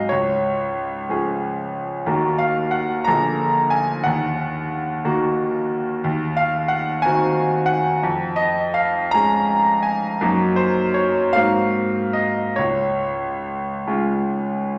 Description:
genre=classical, romantic character piece for solo piano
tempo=45-63 BPM (dotted quarters)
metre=6/8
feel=rubato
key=Db major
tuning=A4 = 440 Hz
part: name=bright grand piano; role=solo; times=0.0-14.8 s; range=Bb1 to Bb5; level=-21 LUFS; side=equal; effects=none
room=wet recital hall reverb, RT60 1.6 s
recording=none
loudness=-21 LUFS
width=mono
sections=0.0-14.8 A section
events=none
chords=0.1 Db; 2.1 Ebm; 3.1 Bb7; 4.1 Ebm; 6.0 Cdim/Eb; 8.0 Db/F; 10.2 Ebm/Gb; 11.3 Ab9; 12.6 Db

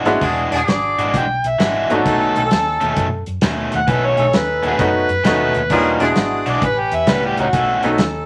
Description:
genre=electric blues shuffle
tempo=131 BPM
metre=4/4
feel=swing 66% on 8ths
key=unclear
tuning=A4 = 439 Hz
part: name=crunchy overdriven guitar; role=riff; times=0.0-7.9 s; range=A2 to F#4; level=-24 LUFS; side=equal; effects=none
part: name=bright grand piano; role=accompaniment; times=0.1-8.0 s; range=G3 to F#4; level=-20 LUFS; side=equal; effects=none
part: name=vintage muted fingered electric bass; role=bass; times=0.1-8.3 s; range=E1 to F#2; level=-29 LUFS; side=equal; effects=none
part: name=warm soul drum kit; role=drums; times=0.1-8.1 s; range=hi-hat, kick drum, snare drum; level=-23 LUFS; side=equal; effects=none
part: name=warm horn section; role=stabs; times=0.2-8.3 s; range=C#4 to B4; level=-25 LUFS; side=equal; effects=none
part: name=overdriven harmonica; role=melody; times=0.7-7.8 s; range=C#4 to G5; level=-21 LUFS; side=equal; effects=none
room=moderate studio reverb, RT60 0.5 s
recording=vinyl crackle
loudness=-17 LUFS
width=mono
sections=0.0-8.3 A section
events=harmonica solo 0.0-8.3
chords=0.0 E9; 2.1 B9; 5.7 E9; 6.6 A9; 7.5 B9

